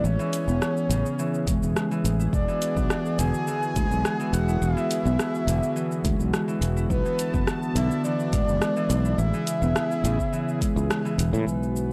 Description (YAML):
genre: organic downtempo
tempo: 105 BPM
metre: 4/4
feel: straight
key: E mixolydian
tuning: A4 = 444 Hz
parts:
  - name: breathy flute-like synth lead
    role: melody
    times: 0.0-11.9 s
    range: B4 to G#5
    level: -33 LUFS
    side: equal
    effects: lush chorus, tape echo
  - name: warm analog pad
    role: sustained chords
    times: 0.0-11.9 s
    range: C#3 to A5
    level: -34 LUFS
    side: equal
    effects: chorus, sidechain pumping
  - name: Celtic harp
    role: arpeggios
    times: 0.0-11.9 s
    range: C#3 to E4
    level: -30 LUFS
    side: equal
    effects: tape echo
  - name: sustaining fretless electric bass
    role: bass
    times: 0.0-11.9 s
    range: E1 to A2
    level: -28 LUFS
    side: equal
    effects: sidechain pumping
  - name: deep house drum kit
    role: drums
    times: 0.0-11.9 s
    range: cabasa, hi-hat, rim click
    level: -34 LUFS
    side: equal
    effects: none
  - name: electronic kick drum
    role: drums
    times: 1.5-10.7 s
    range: none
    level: -30 LUFS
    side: equal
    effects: none
  - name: bronze singing bowl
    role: texture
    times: 11.5-11.9 s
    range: G#3 to G#5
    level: -38 LUFS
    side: equal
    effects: none
room: little or no reverb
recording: dry, gritty hardware recording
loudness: -25 LUFS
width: mono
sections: 0.0-11.5 A section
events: band accent 10.9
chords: 0.0 Amaj7; 2.3 Eadd9; 6.9 Bm7; 9.2 Amaj7